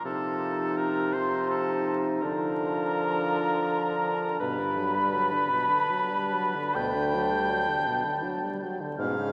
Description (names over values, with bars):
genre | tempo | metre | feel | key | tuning
classical, slow romantic movement for wind quintet | 55 BPM (dotted quarters) | 12/8 | rubato | unclear | A4 = 439 Hz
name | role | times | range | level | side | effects
mellow concert flute | melody | 0.0-9.3 s | A5 to G6 | -33 LUFS | equal | none
warm oboe | second line | 0.0-9.3 s | A4 to G5 | -34 LUFS | equal | none
mellow bassoon | bass | 0.0-9.3 s | D2 to D3 | -34 LUFS | equal | none
clear French horn | accompaniment | 0.1-9.3 s | B2 to G3 | -36 LUFS | equal | none
clear clarinet | accompaniment | 0.1-9.3 s | C#4 to Eb4 | -36 LUFS | equal | none
room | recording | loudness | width
wet cathedral reverb, RT60 5.9 s | recorded in a church or concert hall, vinyl crackle | -27 LUFS | mono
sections
0.0-9.3 A section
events
none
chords
0.1 F7/C; 2.2 Bb/D; 4.4 Gmaj7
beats
| 0.05 1.15 2.23 3.32 | 4.41 5.50 6.76 7.86 | 8.99